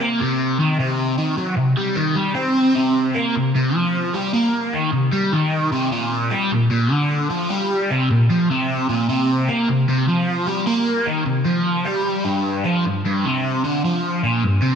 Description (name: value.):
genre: rock.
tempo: 152 BPM.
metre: 4/4.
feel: straight.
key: unclear.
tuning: A4 = 439 Hz.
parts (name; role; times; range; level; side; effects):
crunchy overdriven guitar; solo; 0.0-14.8 s; G2 to C4; -17 LUFS; equal; phaser.
room: wet lush hall reverb, RT60 3.0 s.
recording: big arena sound.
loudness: -17 LUFS.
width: side -7 dB against mid.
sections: 0.0-2.8 A section; 2.8-14.8 B section.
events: none.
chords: none.